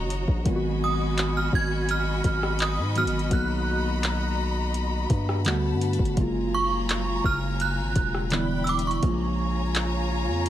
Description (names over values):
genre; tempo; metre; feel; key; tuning
contemporary R&B; 84 BPM; 4/4; straight; unclear; A4 = 440 Hz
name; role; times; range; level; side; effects
muted felt-like synth keys; accompaniment; 0.0-10.5 s; Db3 to Gb4; -29 LUFS; equal; chorus
warm studio string section; sustained chords; 0.0-10.5 s; Gb3 to Cb6; -32 LUFS; left 1 dB; none
long sustained 808-style bass; bass; 0.0-10.5 s; Fb1 to Ab2; -28 LUFS; equal; none
smooth R&B drum kit; drums; 0.1-10.5 s; handclaps, hi-hat, kick drum, rim click; -26 LUFS; equal; vintage 12-bit sampler grit
synth chime; melody; 0.8-10.5 s; Db6 to Ab6; -29 LUFS; right 4 dB; ensemble chorus, tremolo
room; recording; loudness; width
little or no reverb; none; -23 LUFS; side -12 dB against mid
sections
0.0-10.5 A section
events
none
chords
0.5 Abm7; 3.3 Bmaj7; 5.5 Gmaj9; 6.2 Gbmaj9; 8.3 Em7; 9.0 Bbm7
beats
| 0.46 1.17 1.89 2.60 | 3.32 4.03 4.74 5.46 | 6.17 6.89 7.60 8.32 | 9.03 9.74 10.46